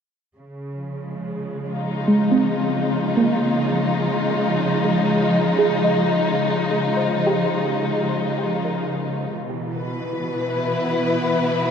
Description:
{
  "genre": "ambient",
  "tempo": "54 BPM",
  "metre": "4/4",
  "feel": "straight",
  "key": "Db lydian",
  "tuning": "A4 = 441 Hz",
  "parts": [
    { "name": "dark symphonic string section", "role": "sustained chords", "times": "0.4-11.7 s", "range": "B2 to B4", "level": "-20 LUFS", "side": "left 1 dB", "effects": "none" },
    { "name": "soft round pluck", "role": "arpeggios", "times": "2.1-9.6 s", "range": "Ab3 to Eb5", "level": "-22 LUFS", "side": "right 1 dB", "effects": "chorus, ping-pong delay" }
  ],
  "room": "wet cathedral reverb, RT60 6.0 s",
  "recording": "none",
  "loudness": "-19 LUFS",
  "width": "side -7 dB against mid",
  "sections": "0.4-11.7 A section",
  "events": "none",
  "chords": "0.4 Dbadd9; 9.3 E5/B"
}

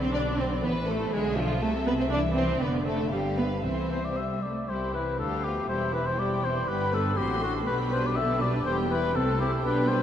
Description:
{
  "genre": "quick classical-period movement for symphony orchestra",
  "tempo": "121 BPM",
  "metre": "2/4",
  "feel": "rubato",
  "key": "C major",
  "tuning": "A4 = 440 Hz",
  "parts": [
    { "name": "dark chamber violin section", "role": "melody", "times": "0.0-10.0 s", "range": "C5 to C6", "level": "-38 LUFS", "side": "left 1 dB", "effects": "none" },
    { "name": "rich chamber violin section", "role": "second line", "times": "0.0-10.0 s", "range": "B3 to D5", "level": "-34 LUFS", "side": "left 1 dB", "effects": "none" },
    { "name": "warm studio viola section", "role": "accompaniment", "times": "0.0-10.0 s", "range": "D3 to D4", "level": "-30 LUFS", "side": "right 1 dB", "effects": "none" },
    { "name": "clear symphonic double bass section", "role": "bass", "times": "0.0-10.0 s", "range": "E1 to D2", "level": "-32 LUFS", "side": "equal", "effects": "none" },
    { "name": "warm chamber cello section", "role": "bass", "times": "0.0-10.0 s", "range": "C2 to A3", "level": "-33 LUFS", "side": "right 1 dB", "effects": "none" },
    { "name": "timpani", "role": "percussion", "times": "3.6-4.4 s", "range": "none", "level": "barely audible", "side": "none", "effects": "none" },
    { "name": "mellow oboe", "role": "second line", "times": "3.9-10.0 s", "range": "F#4 to E5", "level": "-29 LUFS", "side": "left 3 dB", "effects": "none" }
  ],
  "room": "wet cathedral reverb, RT60 5.9 s",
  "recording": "in a vast, echoing space",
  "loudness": "-25 LUFS",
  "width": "side -9 dB against mid",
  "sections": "0.0-4.7 A section; 4.7-10.0 A section",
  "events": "none",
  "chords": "0.0 Bm; 0.6 Am; 1.1 E7/B; 1.6 C6; 2.6 Dm/F; 3.1 G7; 3.6 C; 5.2 G7/D; 5.7 C/E; 6.7 G; 7.2 D7/A; 7.7 G/B; 8.7 Em; 9.1 Am/C"
}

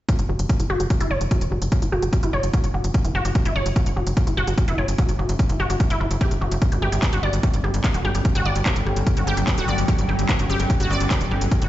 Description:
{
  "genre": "psychedelic trance",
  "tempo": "147 BPM",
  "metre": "4/4",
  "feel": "straight",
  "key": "unclear",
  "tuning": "A4 = 440 Hz",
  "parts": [
    { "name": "wide unison pluck", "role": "riff", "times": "0.1-11.7 s", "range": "E4 to D5", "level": "-27 LUFS", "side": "right 1 dB", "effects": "auto-pan, vintage 12-bit sampler grit, sidechain pumping, digital delay" },
    { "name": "electronic kick drum", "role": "drums", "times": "0.1-11.6 s", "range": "none", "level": "-20 LUFS", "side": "equal", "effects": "overdrive, small room ambience" },
    { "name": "techno drum kit", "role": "drums", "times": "0.1-11.7 s", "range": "handclaps, hi-hat", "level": "-31 LUFS", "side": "equal", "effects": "overdrive, small room ambience" },
    { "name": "warbly tape-like pad", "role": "texture", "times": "2.4-11.7 s", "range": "D3 to G5", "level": "-34 LUFS", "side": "left 2 dB", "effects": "chorus, built-in reverb, sidechain pumping" },
    { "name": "tight sequencer bass", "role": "bass", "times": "0.2-11.7 s", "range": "D1 to G1", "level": "-23 LUFS", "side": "equal", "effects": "tube saturation" },
    { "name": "swarming drone", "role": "sustained chords", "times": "7.2-11.7 s", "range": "F#3 to C#4", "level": "-29 LUFS", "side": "equal", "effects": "built-in reverb, sidechain pumping" }
  ],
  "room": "light reverb",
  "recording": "played on a big sound system in a bare room, large studio reverb, nothing above 7.8 kHz",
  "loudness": "-19 LUFS",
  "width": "side -14 dB against mid",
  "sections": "0.1-11.7 A section",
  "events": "fade-in on ambient pad 0.1-11.7; filter sweep on synth arpeggio sound 0.1-11.7",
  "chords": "0.1 F#5; 6.6 G5"
}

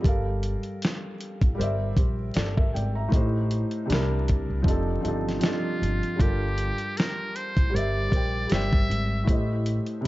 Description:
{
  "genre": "lo-fi hip hop",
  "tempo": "78 BPM",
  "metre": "4/4",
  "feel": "swing 56% on 16ths",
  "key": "unclear",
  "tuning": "A4 = 440 Hz",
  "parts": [
    { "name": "felt-muted upright piano", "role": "accompaniment", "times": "0.0-10.1 s", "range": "A2 to Bb5", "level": "-29 LUFS", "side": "equal", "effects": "low-pass filter" },
    { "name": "dusty soul sampler-style drum kit", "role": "drums", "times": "0.0-10.1 s", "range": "hi-hat, kick drum, snare drum", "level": "-24 LUFS", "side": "equal", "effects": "none" },
    { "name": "upright bass", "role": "bass", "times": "0.1-9.8 s", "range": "F1 to C2", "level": "-28 LUFS", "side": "equal", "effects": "none" },
    { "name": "trumpet with metal mute", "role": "melody", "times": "5.4-9.3 s", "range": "F4 to E5", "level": "-31 LUFS", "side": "equal", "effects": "low-pass filter, tape echo" }
  ],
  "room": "light reverb, small room reverb",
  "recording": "dark, warm production, vinyl crackle, nothing above 7.7 kHz",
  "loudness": "-23 LUFS",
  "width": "side -17 dB against mid",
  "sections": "0.0-10.1 A section",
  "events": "none",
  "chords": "0.0 Gm7; 1.6 C9/G; 3.1 Am7b5; 3.9 C7; 4.7 F13; 6.2 Gm7; 7.7 C9/G; 9.3 Am7b5"
}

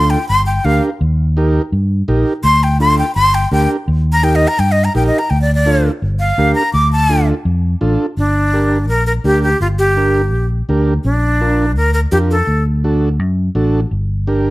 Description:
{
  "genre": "latin, cumbia",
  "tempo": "168 BPM",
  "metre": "4/4",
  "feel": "straight",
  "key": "G minor",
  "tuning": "A4 = 440 Hz",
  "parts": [
    { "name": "breathy jazz flute", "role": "melody", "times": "0.0-12.6 s", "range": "D4 to D6", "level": "-15 LUFS", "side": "left 1 dB", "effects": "plate reverb" },
    { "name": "overdriven combo organ", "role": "accompaniment", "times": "0.0-14.5 s", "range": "D4 to Bb4", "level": "-18 LUFS", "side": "right 2 dB", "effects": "none" },
    { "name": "fingered electric bass", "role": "bass", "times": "0.0-14.5 s", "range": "G1 to G2", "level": "-15 LUFS", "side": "equal", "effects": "none" }
  ],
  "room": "light reverb",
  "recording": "none",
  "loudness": "-12 LUFS",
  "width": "side -18 dB against mid",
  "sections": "0.0-8.2 A section; 8.2-14.5 B section",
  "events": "flute solo 0.0-8.2",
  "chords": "0.3 Gm; 1.0 Eb; 2.4 Dm; 3.2 Gm; 3.9 Eb; 5.3 Dm; 6.0 Gm7; 6.7 Dm; 8.2 Gm; 11.0 Bb; 12.5 D; 13.9 Gm"
}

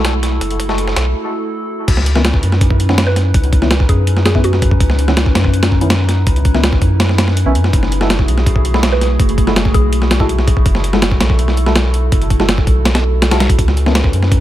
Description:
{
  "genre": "drum and bass, jungle",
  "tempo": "164 BPM",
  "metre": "4/4",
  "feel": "straight",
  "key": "C# minor",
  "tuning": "A4 = 440 Hz",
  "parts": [
    { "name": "warbly tape-like pad", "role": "sustained chords", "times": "0.0-14.4 s", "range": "A3 to B4", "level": "-22 LUFS", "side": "equal", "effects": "chorus, built-in reverb, vintage 12-bit sampler grit" },
    { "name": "soft dub sub bass", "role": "bass", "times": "0.0-14.4 s", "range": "F#1 to F#2", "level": "-14 LUFS", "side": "equal", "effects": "none" },
    { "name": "breakbeat sampler-style drum kit", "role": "drums", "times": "0.0-14.4 s", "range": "crash cymbal, hi-hat, kick drum, snare drum", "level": "-15 LUFS", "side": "equal", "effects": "high-pass filter on hats, high-pass filter on kick, high-pass filter on snare, high-pass filter on cymbals" },
    { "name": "deep mellow chord stab", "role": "stabs", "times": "0.7-13.9 s", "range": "D#3 to A4", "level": "-22 LUFS", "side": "left 1 dB", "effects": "chorus, cassette tape, dub echo" },
    { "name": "mallet-like synth pluck", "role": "melody", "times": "3.1-4.8, 8.9-10.0 s", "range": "F#4 to B4", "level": "-22 LUFS", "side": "right 1 dB", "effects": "chorus, phaser, vintage 12-bit sampler grit, dub echo" }
  ],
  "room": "little or no reverb",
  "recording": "none",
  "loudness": "-11 LUFS",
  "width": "side -13 dB against mid",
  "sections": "0.0-1.9 A section; 1.9-14.4 B section",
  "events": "build-up 0.0-1.9; break 1.1-1.9; drop 1.9-14.4",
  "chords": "0.0 F#m7; 1.9 C#m9; 7.7 F#m9; 13.6 C#m9"
}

